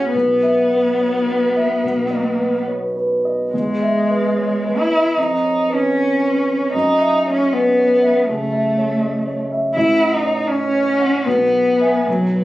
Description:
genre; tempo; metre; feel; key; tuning
classical, romantic duo for cello and grand piano; 69-82 BPM; 4/4; rubato; E major; A4 = 440 Hz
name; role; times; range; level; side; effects
warm cello; melody; 0.0-12.4 s; F#3 to E4; -16 LUFS; equal; none
dark concert grand piano; accompaniment; 0.0-12.4 s; A1 to G#5; -21 LUFS; right 1 dB; none
room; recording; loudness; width
light reverb; recorded on a phone in the room, club reverb, compression; -15 LUFS; side -16 dB against mid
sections
0.0-12.4 A section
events
none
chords
0.1 E5/B; 1.8 B; 3.5 E; 5.2 C#7/E#; 6.7 F#m7; 9.8 F#m/A; 11.3 E/B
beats
| 0.14 0.99 1.83 2.67 | 3.53 4.37 5.17 5.95 | 6.74 7.53 8.28 9.03 | 9.76 10.49 11.26 12.07

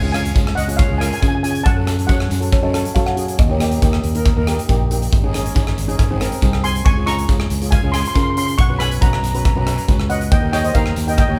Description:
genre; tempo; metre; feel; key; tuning
calypso; 138 BPM; 4/4; straight; Db major; A4 = 440 Hz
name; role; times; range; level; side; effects
steel pan; melody; 0.0-2.9, 6.6-11.4 s; Bb4 to Db6; -25 LUFS; equal; none
steel pan; accompaniment; 0.0-11.4 s; Bb3 to Db5; -27 LUFS; equal; none
fingered electric bass; bass; 0.0-11.4 s; Ab1 to Gb3; -23 LUFS; equal; none
big rock drum kit; drums; 0.1-11.3 s; hi-hat, kick drum, rim click; -20 LUFS; equal; none
guiro; percussion; 0.3-11.4 s; none; -41 LUFS; equal; none
buzzing kalimba; second line; 2.5-4.4 s; Db5 to Gb5; -28 LUFS; equal; none
room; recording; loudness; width
moderate large studio reverb, RT60 1.0 s; band playing live in one room; -17 LUFS; mono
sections
0.0-11.4 A section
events
none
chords
0.0 Db; 1.7 Gbm; 3.4 Eb; 5.1 Absus4; 6.0 Ab; 6.9 Db; 8.6 Cbsus2; 10.3 Eb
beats
0.35 0.79 1.22 | 1.65 2.09 2.52 2.95 | 3.39 3.82 4.25 4.69 | 5.12 5.55 5.99 6.42 | 6.85 7.29 7.72 8.15 | 8.58 9.02 9.45 9.88 | 10.31 10.75 11.18

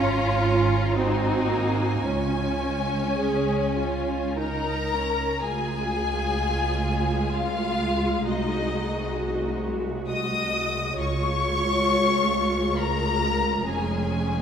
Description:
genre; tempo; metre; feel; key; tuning
classical, slow romantic movement for string orchestra; 48-68 BPM; 3/4; rubato; Db major; A4 = 440 Hz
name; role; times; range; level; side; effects
rich studio violin section; melody; 0.0-14.4 s; Eb5 to Eb6; -28 LUFS; left 4 dB; none
rich studio violin section; second line; 0.0-14.4 s; Db4 to Eb5; -29 LUFS; left 2 dB; none
rich studio viola section; accompaniment; 0.0-14.4 s; Ab3 to Ab4; -28 LUFS; right 1 dB; none
bright studio cello section; bass; 0.0-14.4 s; C2 to Db4; -32 LUFS; right 2 dB; none
clear symphonic double bass section; bass; 0.0-14.4 s; F1 to Db2; -29 LUFS; right 3 dB; none
room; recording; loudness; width
wet scoring stage reverb, RT60 2.0 s; heard from further back in the room; -22 LUFS; side -8 dB against mid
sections
0.0-5.4 A section; 5.4-14.4 B section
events
none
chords
0.0 Db/Ab; 1.0 Ab7; 2.1 Db; 8.3 Ab7/C; 11.0 Db; 13.7 Db/F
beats
0.97 | 2.05 3.18 4.38 | 5.45 6.40 7.33 | 8.26 9.19 10.10 | 10.99 11.89 12.78 | 13.67

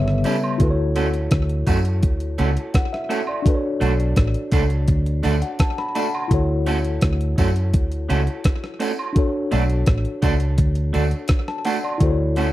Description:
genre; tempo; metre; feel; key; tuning
lovers rock reggae; 84 BPM; 4/4; straight; D major; A4 = 440 Hz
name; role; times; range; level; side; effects
mellow tine electric piano; accompaniment; 0.0-12.5 s; C#3 to B5; -26 LUFS; left 2 dB; medium stereo tremolo, slapback echo
vintage muted fingered electric bass; bass; 0.0-12.5 s; G1 to F#2; -20 LUFS; equal; none
clean 12-bit digital drum machine; drums; 0.1-12.5 s; hi-hat, kick drum, rim click; -19 LUFS; equal; overdrive
electric guitar through a small old amp; stabs; 0.2-12.5 s; G3 to A4; -25 LUFS; right 4 dB; spring reverb
tambourine and woodblock; percussion; 0.3-12.5 s; none; -34 LUFS; right 4 dB; slapback echo
room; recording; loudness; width
little or no reverb; dry, close 1970s-style studio recording; -18 LUFS; side -15 dB against mid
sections
0.6-12.5 A section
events
none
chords
0.0 A7; 0.6 Dmaj7; 3.5 Bm7; 6.3 Dmaj7; 9.2 Bm7 (rootless); 12.0 Dmaj7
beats
| 0.60 1.31 2.03 2.74 | 3.46 4.17 4.88 5.59 | 6.31 7.02 7.73 8.45 | 9.16 9.87 10.59 11.30 | 12.01

